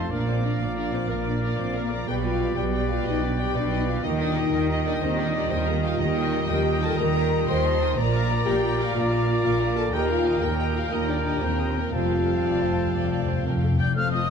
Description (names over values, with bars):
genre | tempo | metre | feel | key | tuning
cinematic, heroic adventure film score | 122 BPM (dotted quarters) | 12/8 | straight | unclear | A4 = 440 Hz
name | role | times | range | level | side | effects
bright concert flute | second line | 0.0-14.3 s | F5 to G6 | -35 LUFS | left 2 dB | none
clear oboe | second line | 0.0-13.8 s | C5 to G5 | -36 LUFS | equal | none
mellow clarinet | second line | 0.0-13.8 s | A4 to C5 | -38 LUFS | left 1 dB | none
rich symphonic violin section | second line | 0.0-14.3 s | F4 to Eb6 | -38 LUFS | left 2 dB | none
rich symphonic viola section | accompaniment | 0.0-14.3 s | A3 to A5 | -34 LUFS | right 1 dB | none
dark French horn section | sustained chords | 0.0-13.8 s | Bb3 to C5 | -28 LUFS | left 3 dB | none
mellow trombone section | sustained chords | 0.0-14.3 s | Bb2 to Bb3 | -33 LUFS | right 4 dB | none
warm trumpet | stabs | 0.0-13.8 s | A4 to Eb5 | -34 LUFS | equal | none
rich symphonic cello section | bass | 0.0-14.3 s | Eb2 to Eb3 | -29 LUFS | right 2 dB | none
rich symphonic double bass section | bass | 0.0-14.3 s | F1 to Eb2 | -29 LUFS | right 2 dB | none
dark symphonic violin section | melody | 0.1-14.3 s | Bb4 to C6 | -35 LUFS | left 5 dB | none
timpani | percussion | 11.9-13.9 s | F2 | -27 LUFS | left 4 dB | none
room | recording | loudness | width
moderate scoring stage reverb, RT60 1.8 s | dark, warm production | -22 LUFS | side -6 dB against mid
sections
0.0-14.0 A section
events
timpani fill 11.9-14.0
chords
0.1 Bb; 2.1 G/B; 4.0 Eb; 8.0 Bb; 9.9 Eb; 11.9 Fadd9